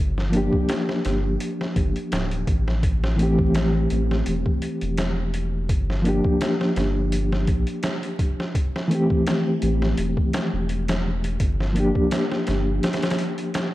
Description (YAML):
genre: trip hop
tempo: 84 BPM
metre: 4/4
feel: swing 55% on 16ths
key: unclear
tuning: A4 = 440 Hz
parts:
  - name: round analog bass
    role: bass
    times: 0.0-12.8 s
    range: D1 to Bb1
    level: -24 LUFS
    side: equal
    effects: none
  - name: trip hop sampler-style drum kit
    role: drums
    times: 0.2-13.7 s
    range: hi-hat, kick drum, snare drum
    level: -25 LUFS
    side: equal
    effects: overdrive
  - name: reed electric piano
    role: accompaniment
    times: 0.3-13.7 s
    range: E3 to G4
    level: -24 LUFS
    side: equal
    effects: overdrive, fast tremolo, tape echo
room: moderate plate reverb, RT60 2.3 s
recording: dreamy mix soaked in reverb, vinyl crackle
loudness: -20 LUFS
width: side -16 dB against mid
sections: 0.0-13.7 A section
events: break 12.8-13.7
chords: 0.0 Gm7; 2.8 Am7; 5.7 Gm7; 8.5 Am7; 11.4 Gm7